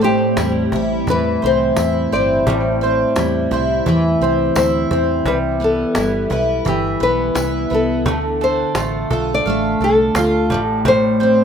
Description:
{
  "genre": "acoustic pop",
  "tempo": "86 BPM",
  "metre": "4/4",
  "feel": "swing 60% on 16ths",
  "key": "A minor",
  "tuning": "A4 = 441 Hz",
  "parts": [
    { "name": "nylon-string guitar", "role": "melody", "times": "0.0-11.4 s", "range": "G4 to D5", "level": "-20 LUFS", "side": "left 2 dB", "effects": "ping-pong delay" },
    { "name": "picked steel-string acoustic guitar", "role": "accompaniment", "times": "0.0-11.4 s", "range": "A2 to F4", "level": "-17 LUFS", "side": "equal", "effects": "double-tracked left and right" },
    { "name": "mandolin", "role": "arpeggios", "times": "0.0-11.4 s", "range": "G3 to F5", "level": "-26 LUFS", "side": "right 6 dB", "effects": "none" },
    { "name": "vintage muted fingered electric bass", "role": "bass", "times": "0.0-11.4 s", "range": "G1 to E2", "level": "-25 LUFS", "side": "equal", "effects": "none" },
    { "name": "cajon", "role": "drums", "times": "0.2-11.4 s", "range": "none", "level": "-24 LUFS", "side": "equal", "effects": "none" },
    { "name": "tambourine", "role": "percussion", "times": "0.4-10.4 s", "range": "none", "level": "-33 LUFS", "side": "left 6 dB", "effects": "none" }
  ],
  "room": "studio reverb",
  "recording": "rough home demo mix",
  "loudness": "-14 LUFS",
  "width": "side -7 dB against mid",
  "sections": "0.0-11.4 A section",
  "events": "none",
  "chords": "0.0 Am7; 5.3 Cmaj7; 8.1 Dm; 10.5 Am7"
}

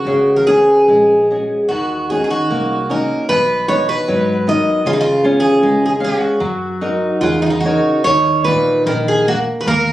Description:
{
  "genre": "fado-style ballad",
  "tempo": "75 BPM",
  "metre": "2/4",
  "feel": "uneven beats, rubato",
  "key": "F# major",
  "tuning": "A4 = 440 Hz",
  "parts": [
    { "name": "picked twelve-string acoustic guitar", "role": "melody", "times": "0.0-9.9 s", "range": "D#4 to D#5", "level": "-16 LUFS", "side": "right 1 dB", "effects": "plate reverb" },
    { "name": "flamenco guitar", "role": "accompaniment", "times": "0.0-9.9 s", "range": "Bb2 to F#5", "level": "-15 LUFS", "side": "equal", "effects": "none" },
    { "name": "upright bass", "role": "bass", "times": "0.1-9.9 s", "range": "A#1 to G#2", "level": "-25 LUFS", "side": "right 1 dB", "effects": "none" }
  ],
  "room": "moderate studio reverb, RT60 0.7 s",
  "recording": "recorded on a phone in the room, studio ambience, compression",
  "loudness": "-13 LUFS",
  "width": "side -14 dB against mid",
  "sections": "0.0-8.0 A section; 8.0-9.9 B section",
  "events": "nylon-string guitar fill 6.8-8.0",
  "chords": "0.1 C#sus4; 1.7 D#m7; 3.3 Bmaj7; 4.9 C#7; 6.4 F#6; 8.0 Eb5"
}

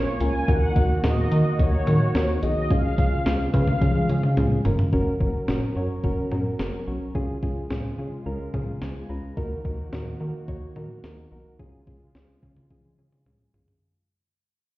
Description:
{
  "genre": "synth-pop",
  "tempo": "108 BPM",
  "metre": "4/4",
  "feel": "straight",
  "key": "unclear",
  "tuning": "A4 = 437 Hz",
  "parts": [
    { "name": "mellow synth brass", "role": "melody", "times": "0.0-4.6 s", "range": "C#5 to G#5", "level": "-30 LUFS", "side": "left 1 dB", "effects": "chorus, analog delay" },
    { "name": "soft electric-piano-like synth keys", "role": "accompaniment", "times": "0.0-13.8 s", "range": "C#4 to A#5", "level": "-30 LUFS", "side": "equal", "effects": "chorus" },
    { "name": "warm analog pad", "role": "sustained chords", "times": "0.0-13.8 s", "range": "C#3 to A#4", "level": "-30 LUFS", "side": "equal", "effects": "chorus" },
    { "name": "rubbery square bass", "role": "bass", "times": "0.0-13.7 s", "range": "E#1 to D#3", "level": "-26 LUFS", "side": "equal", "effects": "none" },
    { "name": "clean 12-bit digital drum machine", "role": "drums", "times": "0.2-13.8 s", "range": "cowbell, hi-hat, kick drum, snare drum, toms", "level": "-25 LUFS", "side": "equal", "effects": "none" }
  ],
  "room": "light reverb, digital ambience",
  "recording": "heard muffled through a wall, stone room reverb, EQ",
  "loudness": "-21 LUFS",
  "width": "side -17 dB against mid",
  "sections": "0.0-4.9 A section; 4.9-13.8 B section",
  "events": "drum fill 3.8-4.9, 12.7-13.8; fade-out 4.9-13.8; synth keys fill 8.3-9.4",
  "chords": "0.5 D#m; 2.7 C#; 4.9 F#; 7.2 C#; 9.4 D#m; 11.6 C#"
}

